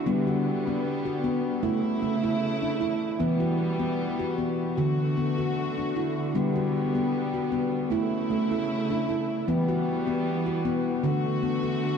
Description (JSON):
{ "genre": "world meditative", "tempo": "77 BPM", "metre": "4/4", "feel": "straight", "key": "unclear", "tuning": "A4 = 440 Hz", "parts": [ { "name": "warm chamber string section", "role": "sustained chords", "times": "0.0-12.0 s", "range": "C#3 to F#4", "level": "-30 LUFS", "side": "right 1 dB", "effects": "none" }, { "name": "handpan", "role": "arpeggios", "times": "0.0-12.0 s", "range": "D3 to F#4", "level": "-26 LUFS", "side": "left 1 dB", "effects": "none" } ], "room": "wet cathedral reverb, RT60 4.6 s", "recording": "dark, warm production", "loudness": "-24 LUFS", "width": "side -6 dB against mid", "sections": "0.0-12.0 A section", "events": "none", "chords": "0.1 G; 1.6 A; 3.2 Em; 4.8 D; 6.3 G; 7.9 A; 9.5 Em; 11.0 D", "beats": "| 0.07 0.85 1.63 2.42 | 3.20 3.98 4.77 5.55 | 6.33 7.12 7.90 8.69 | 9.47 10.25 11.03 11.82" }